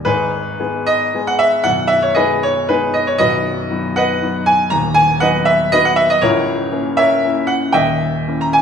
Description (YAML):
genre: classical, romantic triple-time dance for piano with dotted rhythms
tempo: 117 BPM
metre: 3/4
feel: uneven beats, rubato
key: G# minor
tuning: A4 = 440 Hz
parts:
  - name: warm baby grand piano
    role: solo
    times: 0.0-8.6 s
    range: B0 to A#5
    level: -13 LUFS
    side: equal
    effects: none
room: wet recital hall reverb, RT60 1.6 s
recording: recorded in a church or concert hall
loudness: -13 LUFS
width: side -7 dB against mid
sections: 0.0-8.6 A section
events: none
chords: 0.0 G#m; 1.6 G#m/B; 3.2 B; 4.7 B/D#; 6.2 A#dim/C#; 7.7 D#7b9